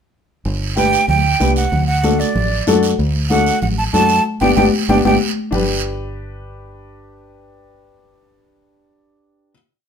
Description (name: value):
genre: latin, cumbia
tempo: 189 BPM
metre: 4/4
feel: straight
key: G major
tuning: A4 = 440 Hz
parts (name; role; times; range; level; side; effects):
- fingered electric bass; bass; 0.5-9.5 s; G1 to F#2; -20 LUFS; equal; none
- congas; percussion; 0.5-5.6 s; none; -20 LUFS; left 1 dB; none
- guiro; percussion; 0.5-5.6 s; none; -26 LUFS; right 7 dB; none
- breathy concert flute; melody; 0.8-5.2 s; D5 to A5; -18 LUFS; right 5 dB; none
- clear upright piano; accompaniment; 0.8-9.5 s; B3 to B4; -19 LUFS; left 5 dB; none
room: moderate studio reverb, RT60 0.7 s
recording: minimal, uncompressed stereo recording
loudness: -13 LUFS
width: side -7 dB against mid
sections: 0.4-5.5 groove; 5.5-8.1 final chord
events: band accent 4.3-5.5; drum fill 4.6-5.5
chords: 0.4 G; 1.7 D; 4.3 G